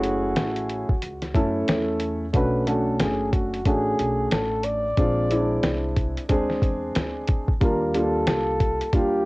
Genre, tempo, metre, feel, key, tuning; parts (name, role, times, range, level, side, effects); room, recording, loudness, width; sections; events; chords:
hip hop, jazz-hop; 91 BPM; 4/4; swing 60% on 16ths; A4 = 440 Hz
breathy flugelhorn; melody; 0.0-9.3 s; F#4 to D5; -26 LUFS; equal; cassette tape
dark concert grand piano; accompaniment; 0.0-9.3 s; G3 to A4; -25 LUFS; equal
upright bass; bass; 0.0-9.2 s; F#1 to F#2; -30 LUFS; equal
lo-fi sampler-style drum kit; drums; 0.0-9.1 s; hi-hat, kick drum, snare drum; -23 LUFS; equal; cassette tape
light reverb; home recording on cassette; -21 LUFS; side -23 dB against mid
0.0-2.3 A section; 2.3-9.3 B section
0.0 F#m9; 2.3 Bm7; 5.0 A#7; 7.6 D#maj7